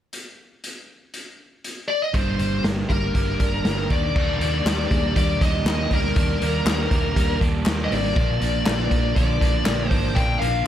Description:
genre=jangly indie pop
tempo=120 BPM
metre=4/4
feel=straight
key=Eb major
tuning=A4 = 440 Hz
part: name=raw garage drum kit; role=drums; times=0.1-10.5 s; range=crash cymbal, hi-hat, kick drum, snare drum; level=-23 LUFS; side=equal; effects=none
part: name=high-gain lead guitar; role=melody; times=1.9-10.7 s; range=Bb4 to G5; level=-26 LUFS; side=left 4 dB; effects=distortion
part: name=crunchy overdriven guitar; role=accompaniment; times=2.1-10.7 s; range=G2 to D4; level=-28 LUFS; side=right 6 dB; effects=none
part: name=twelve-string electric guitar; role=arpeggios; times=2.1-10.7 s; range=G2 to D4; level=-29 LUFS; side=left 1 dB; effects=none
part: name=vintage muted fingered electric bass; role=bass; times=2.1-10.6 s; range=G1 to Eb2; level=-26 LUFS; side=equal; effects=none
part: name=group handclap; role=percussion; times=4.7-9.8 s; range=none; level=-32 LUFS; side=left 4 dB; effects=none
room=light reverb, small room reverb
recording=none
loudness=-19 LUFS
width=side -11 dB against mid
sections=0.1-2.1 A section; 2.1-4.2 B section; 4.2-10.7 C section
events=none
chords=0.1 N.C.; 2.1 Gm; 3.9 Ebmaj7; 8.2 Bb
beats=| 0.13 0.63 1.14 1.64 | 2.15 2.65 3.15 3.65 | 4.16 4.66 5.16 5.66 | 6.16 6.66 7.16 7.66 | 8.16 8.66 9.16 9.66 | 10.16 10.66

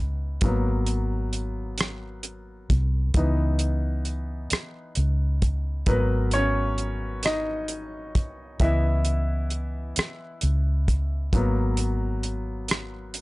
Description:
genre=slow six-eight R&B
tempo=44 BPM (dotted quarters)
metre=6/8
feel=straight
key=G# minor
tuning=A4 = 441 Hz
part: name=clear concert grand piano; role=accompaniment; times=0.0-13.2 s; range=E3 to E5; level=-29 LUFS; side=left 1 dB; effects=none
part: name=vintage muted fingered electric bass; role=bass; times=0.0-13.2 s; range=G#1 to C#2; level=-25 LUFS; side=equal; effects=none
part: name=damped 70s drum kit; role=drums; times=0.4-13.2 s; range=hi-hat, kick drum, rim click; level=-24 LUFS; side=equal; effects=none
room=little or no reverb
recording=dry, gritty hardware recording, nothing above 10.9 kHz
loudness=-23 LUFS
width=side -21 dB against mid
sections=0.0-13.2 A section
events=grand piano solo 0.0-13.2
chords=0.4 G#m9; 3.1 C#m9; 5.9 G#m9; 8.6 C#m9; 11.3 G#m9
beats=| 0.42 1.78 | 3.15 4.51 | 5.87 7.24 | 8.60 9.96 | 11.33 12.69

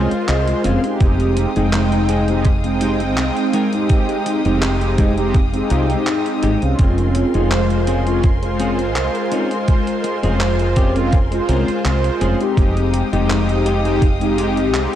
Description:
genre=vaporwave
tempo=83 BPM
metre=4/4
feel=swing 53% on 16ths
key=unclear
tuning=A4 = 441 Hz
part: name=mellow synth brass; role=accompaniment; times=0.0-15.0 s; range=Ab3 to G5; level=-19 LUFS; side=equal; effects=lush chorus, tape echo
part: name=clear symphonic string section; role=sustained chords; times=0.0-15.0 s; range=Ab3 to Eb6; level=-29 LUFS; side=left 1 dB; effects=none
part: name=semi-hollow electric guitar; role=riff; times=0.0-14.6 s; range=Ab3 to F5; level=-25 LUFS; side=left 2 dB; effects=wide subtle chorus, tape echo
part: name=woody fretless electric bass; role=bass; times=0.0-14.9 s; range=F1 to C2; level=-20 LUFS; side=equal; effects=tube saturation
part: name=detuned 8-bit digital drum machine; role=drums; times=0.1-14.9 s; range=handclaps, hi-hat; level=-27 LUFS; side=right 1 dB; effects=vintage 12-bit sampler grit, gated reverb
part: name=electronic kick drum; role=drums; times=1.0-14.2 s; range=none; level=-15 LUFS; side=equal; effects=vintage 12-bit sampler grit
room=light reverb, digital ambience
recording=none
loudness=-15 LUFS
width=side -11 dB against mid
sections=0.0-15.0 A section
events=clean electric guitar fill 0.0-1.0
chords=0.0 Bbm9/F; 12.6 Fm9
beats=0.29 | 1.01 1.73 2.46 3.18 | 3.90 4.62 5.35 6.07 | 6.79 7.51 8.24 8.96 | 9.68 10.41 11.13 11.85 | 12.57 13.30 14.02 14.74

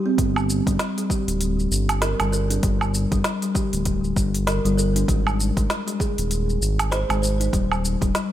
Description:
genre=organic downtempo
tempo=98 BPM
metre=4/4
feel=swing 59% on 16ths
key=G phrygian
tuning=A4 = 437 Hz
part: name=kalimba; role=arpeggios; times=0.0-8.3 s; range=G3 to C5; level=-24 LUFS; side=left 1 dB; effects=ping-pong delay
part: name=smooth synth bass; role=bass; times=0.2-8.1 s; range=D1 to Ab1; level=-24 LUFS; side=equal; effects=tube saturation, sidechain pumping
part: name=electronic kick drum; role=drums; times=0.2-8.1 s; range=none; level=-24 LUFS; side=equal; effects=overdrive, studio reverb
part: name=organic electronic drum kit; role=drums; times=0.2-8.3 s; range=hi-hat, shaker, snare drum, woodblock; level=-26 LUFS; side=right 1 dB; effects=overdrive, studio reverb
room=little or no reverb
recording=none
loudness=-20 LUFS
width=side -12 dB against mid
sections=0.2-8.3 A section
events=none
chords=0.2 Gm; 5.1 Ab; 7.5 Eb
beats=| 0.18 0.80 1.41 2.02 | 2.63 3.25 3.86 4.47 | 5.08 5.69 6.31 6.92 | 7.53 8.14

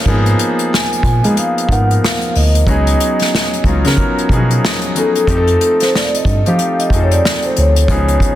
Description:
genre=R&B, neo-soul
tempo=92 BPM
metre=4/4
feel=swing 59% on 16ths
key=unclear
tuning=A4 = 440 Hz
part: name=clear concert grand piano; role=accompaniment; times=0.0-8.4 s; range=E#3 to C#5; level=-17 LUFS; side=equal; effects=none
part: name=tine electric piano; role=bass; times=0.1-8.2 s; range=C#2 to G#3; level=-14 LUFS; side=equal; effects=none
part: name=unplugged drum kit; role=drums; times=0.1-8.4 s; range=hi-hat, kick drum, snare drum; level=-17 LUFS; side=equal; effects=none
part: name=vibraphone with soft mallets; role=melody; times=0.7-8.4 s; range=A4 to G#5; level=-18 LUFS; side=left 1 dB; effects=slapback echo
room=light reverb, small room ambience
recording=dense, heavily limited modern master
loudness=-11 LUFS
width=side -13 dB against mid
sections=0.0-8.4 A section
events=none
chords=0.1 G#m69; 2.7 C#9sus4; 5.3 F7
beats=| 0.06 0.71 1.36 2.01 | 2.67 3.32 3.97 4.62 | 5.27 5.93 6.58 7.23 | 7.88

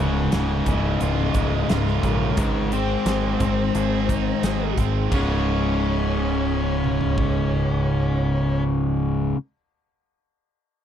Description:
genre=classic rock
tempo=88 BPM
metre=4/4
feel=straight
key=Db major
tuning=A4 = 440 Hz
part: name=octave-fuzz lead guitar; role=second line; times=0.0-8.6 s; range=F3 to Ab4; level=-28 LUFS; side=left 1 dB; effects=distortion
part: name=distorted electric guitar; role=riff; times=0.0-9.4 s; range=Db2 to Ab3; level=-24 LUFS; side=left 6 dB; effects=distortion
part: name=overdriven electric guitar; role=riff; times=0.0-9.4 s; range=Db2 to Ab4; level=-27 LUFS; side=right 12 dB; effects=none
part: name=growling picked electric bass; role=bass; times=0.0-9.3 s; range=Db1 to Bb1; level=-25 LUFS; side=right 1 dB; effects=overdrive
part: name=big rock drum kit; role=drums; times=0.3-7.3 s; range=crash cymbal, hi-hat, kick drum, snare drum, toms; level=-28 LUFS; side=right 1 dB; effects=none
room=little or no reverb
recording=dry, close 1970s-style studio recording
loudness=-20 LUFS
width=side -9 dB against mid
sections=0.0-5.1 A section; 5.1-7.9 B section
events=none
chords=0.0 Db; 2.4 Ab; 5.1 Db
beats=0.32 1.01 1.69 | 2.38 3.06 3.75 4.43 | 5.12 5.81 6.49 7.18

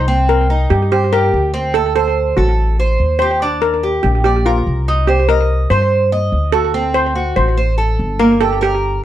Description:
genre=latin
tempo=144 BPM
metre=4/4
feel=straight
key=unclear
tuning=A4 = 439 Hz
part: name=steel pan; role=melody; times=0.0-9.0 s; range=F4 to C5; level=-17 LUFS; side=right 1 dB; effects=slapback echo
part: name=Cuban tres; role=arpeggios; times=0.0-9.0 s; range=Bb3 to Eb5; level=-18 LUFS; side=right 1 dB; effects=none
part: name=upright bass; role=bass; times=0.0-9.0 s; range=G1 to G2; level=-16 LUFS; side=equal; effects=none
room=light reverb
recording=dry, close 1970s-style studio recording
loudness=-12 LUFS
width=side -12 dB against mid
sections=0.0-9.0 A section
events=none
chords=0.1 Cmadd9; 1.7 D7; 3.4 Ebmaj7; 5.1 Cm; 6.7 D7; 8.4 Gm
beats=| 0.08 0.50 0.92 1.33 | 1.75 2.17 2.58 3.00 | 3.41 3.83 4.25 4.66 | 5.08 5.50 5.91 6.33 | 6.75 7.16 7.58 8.00 | 8.41 8.83

